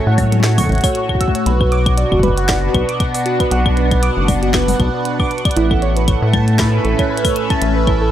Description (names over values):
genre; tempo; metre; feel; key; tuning
IDM; 117 BPM; 4/4; swing 56% on 16ths; unclear; A4 = 440 Hz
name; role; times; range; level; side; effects
phased analog pad; sustained chords; 0.0-8.1 s; A2 to F#5; -20 LUFS; left 2 dB; phaser, chorus
harp-like synth pluck; arpeggios; 0.0-8.1 s; E4 to E6; -20 LUFS; right 5 dB; chorus, cassette tape, analog delay
rubbery square bass; bass; 0.1-8.1 s; F#1 to A2; -16 LUFS; equal; none
electronic kick drum; drums; 0.2-8.0 s; none; -19 LUFS; equal; small room ambience
glitchy drum kit; drums; 0.2-8.0 s; claves, hi-hat, snare drum, toms; -22 LUFS; left 3 dB; small room ambience, dub echo
room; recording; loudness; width
light reverb; echo-heavy mix; -13 LUFS; side -11 dB against mid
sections
0.0-8.1 A section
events
none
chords
0.0 F#m/A; 1.5 Bm; 5.6 Aadd9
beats
0.44 0.95 | 1.46 1.98 2.49 3.00 | 3.51 4.03 4.54 5.05 | 5.57 6.08 6.59 7.10 | 7.62